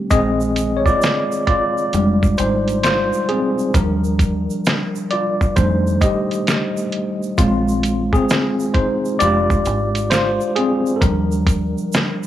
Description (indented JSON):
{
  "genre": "lo-fi hip hop",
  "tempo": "66 BPM",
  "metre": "4/4",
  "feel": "swing 66% on 16ths",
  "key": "F dorian",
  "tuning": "A4 = 440 Hz",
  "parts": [
    { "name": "tine electric piano", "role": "accompaniment", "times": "0.0-12.3 s", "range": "Eb3 to Eb5", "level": "-18 LUFS", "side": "left 1 dB", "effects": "overdrive, medium stereo tremolo, low-pass filter" },
    { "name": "deep dub fingered electric bass", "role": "bass", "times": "0.1-11.7 s", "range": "F1 to F2", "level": "-21 LUFS", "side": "right 1 dB", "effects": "none" },
    { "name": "lo-fi sampler-style drum kit", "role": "drums", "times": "0.1-12.2 s", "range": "hi-hat, kick drum, snare drum", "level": "-19 LUFS", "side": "equal", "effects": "none" },
    { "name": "egg shaker", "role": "percussion", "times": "0.1-12.3 s", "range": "none", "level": "-38 LUFS", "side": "right 11 dB", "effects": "none" }
  ],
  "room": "light reverb, digital ambience",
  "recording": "small room ambience",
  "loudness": "-15 LUFS",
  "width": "side -12 dB against mid",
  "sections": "0.0-12.3 A section",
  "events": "tine electric piano solo 0.0-12.3",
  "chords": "0.1 Bb9sus4; 1.9 Fm69; 3.7 Ebmaj9; 5.6 F13; 7.4 Bb9sus4; 9.2 Fm69; 11.0 Ebmaj9"
}